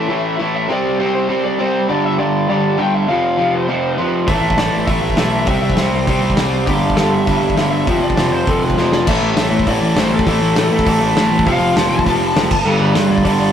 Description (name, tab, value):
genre	punk rock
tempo	200 BPM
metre	4/4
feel	straight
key	A minor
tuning	A4 = 440 Hz
part	lead guitar through a small cranked amp	melody	0.0-13.5 s	G4 to A5	-21 LUFS	left 3 dB	overdrive
part	overdriven semi-hollow guitar	riff	0.0-13.5 s	F2 to C4	-21 LUFS	left 5 dB	none
part	raw garage guitar	riff	0.0-13.5 s	F2 to C4	-17 LUFS	right 3 dB	overdrive
part	fuzz picked electric bass	bass	4.3-13.5 s	F1 to C2	-20 LUFS	equal	overdrive
part	loose indie drum kit	drums	4.3-13.3 s	crash cymbal, hi-hat, kick drum, snare drum	-19 LUFS	equal	none
room	light reverb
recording	rough rehearsal-room recording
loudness	-13 LUFS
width	side -9 dB against mid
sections	0.0-9.1 A section; 9.1-13.5 B section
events	drum fill 8.8-9.1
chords	0.0 A5; 0.7 C5; 1.9 G5; 3.1 F5; 4.3 A5; 5.5 C; 6.7 G5; 7.9 F; 9.1 A5; 11.5 F; 12.5 G